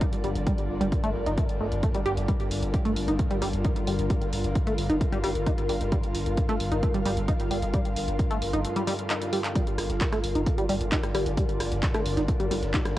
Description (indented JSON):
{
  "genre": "driving peak-time techno",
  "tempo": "132 BPM",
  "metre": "4/4",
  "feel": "straight",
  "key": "G minor",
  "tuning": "A4 = 438 Hz",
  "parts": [
    { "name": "tight sequenced synth", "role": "riff", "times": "0.0-12.8 s", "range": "G3 to G4", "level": "-30 LUFS", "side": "equal", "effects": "chorus, phaser, tube saturation, sidechain pumping, cassette tape, tape echo" },
    { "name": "metallic inharmonic drone", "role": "drone", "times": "0.0-13.0 s", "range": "G2 to D3", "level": "-34 LUFS", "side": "left 2 dB", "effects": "chorus, built-in reverb, sidechain pumping, cassette tape" },
    { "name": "electronic kick drum", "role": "drums", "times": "0.0-12.8 s", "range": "none", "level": "-27 LUFS", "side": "equal", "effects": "none" },
    { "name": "techno drum kit", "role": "drums", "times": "0.0-12.9 s", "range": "handclaps, hi-hat, rim click", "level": "-35 LUFS", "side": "equal", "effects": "none" },
    { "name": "ethereal airy pad", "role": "texture", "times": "0.0-13.0 s", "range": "F4 to F5", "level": "-33 LUFS", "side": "equal", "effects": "ensemble chorus, built-in reverb, sidechain pumping, cassette tape" },
    { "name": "saturated sub bass", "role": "bass", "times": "0.2-12.7 s", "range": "G1", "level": "-31 LUFS", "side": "equal", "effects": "tube saturation, sidechain pumping, low-pass filter" },
    { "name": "dusty soul sampler-style drum kit", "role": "drums", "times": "9.6-13.0 s", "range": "hi-hat, snare drum", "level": "-46 LUFS", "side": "equal", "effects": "none" }
  ],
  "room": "light reverb",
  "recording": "home recording on cassette",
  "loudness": "-24 LUFS",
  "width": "side -15 dB against mid",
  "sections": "0.0-13.0 A section",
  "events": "kick drops out 8.6-9.6; drum fill 9.1-9.6",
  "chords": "0.0 Gm"
}